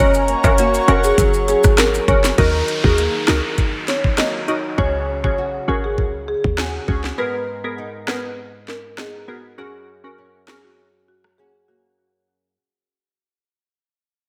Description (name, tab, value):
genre	dancehall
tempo	100 BPM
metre	4/4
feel	straight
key	unclear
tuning	A4 = 440 Hz
part	marimba with medium mallets	melody	0.0-11.8 s	Gb4 to Eb5	-24 LUFS	equal	analog delay
part	glassy wavetable pluck	accompaniment	0.0-10.6 s	Cb4 to Bb4	-26 LUFS	equal	chorus, sidechain pumping
part	airy breathy pad	sustained chords	0.0-2.4 s	Db5 to Db6	-24 LUFS	equal	chorus, sidechain pumping
part	nylon-string guitar	arpeggios	0.0-12.6 s	Gb2 to Bb4	-31 LUFS	equal	ensemble chorus, analog delay
part	short 808-style bass	bass	0.0-7.1 s	F1 to Eb2	-23 LUFS	equal	none
part	maracas and timbales	percussion	0.1-2.4 s	none	-27 LUFS	equal	none
part	island pop drum kit	drums	0.3-11.4 s	hi-hat, kick drum, rim click, snare drum	-22 LUFS	equal	none
part	downlifter	sound effects	2.4-7.2 s	none	-31 LUFS	equal	none
room	wet plate reverb, RT60 1.9 s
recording	dreamy mix soaked in reverb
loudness	-18 LUFS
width	mono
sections	0.0-2.4 A section; 2.4-12.0 B section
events	fade-out 2.4-12.0; break 11.4-12.0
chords	0.0 Gb; 2.4 Ebm; 4.8 Dbsus4; 7.2 Abmadd9; 9.6 Gb